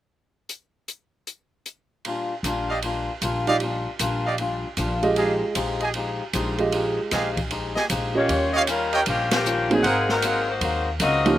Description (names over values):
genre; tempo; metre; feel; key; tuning
jazz, big band swing; 154 BPM; 4/4; swing 65% on 8ths; Eb major; A4 = 439 Hz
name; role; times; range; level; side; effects
open jazz drum kit; drums; 0.5-11.3 s; hi-hat, kick drum, ride cymbal, snare drum; -29 LUFS; right 2 dB; none
fingerpicked swing-style acoustic guitar; accompaniment; 2.1-11.3 s; Ab2 to G4; -28 LUFS; left 3 dB; slapback echo
upright bass; bass; 2.4-11.4 s; Ab1 to Eb2; -29 LUFS; equal; none
bright trumpet section; stabs; 2.7-10.4 s; G4 to Ab5; -24 LUFS; right 2 dB; none
warm upright piano; accompaniment; 3.5-11.4 s; F3 to Eb5; -22 LUFS; right 3 dB; slapback echo
clear saxophone section; melody; 8.2-11.4 s; F3 to Eb5; -24 LUFS; left 3 dB; slapback echo
room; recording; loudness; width
little or no reverb; recorded outdoors, with no room sound; -21 LUFS; side -13 dB against mid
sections
0.5-2.1 A section; 2.1-8.3 B section; 8.3-11.4 C section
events
band accent 9.3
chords
0.5 N.C.; 2.1 Ebmaj9/Bb; 5.2 Fm9; 8.3 Eb9; 9.8 Ab9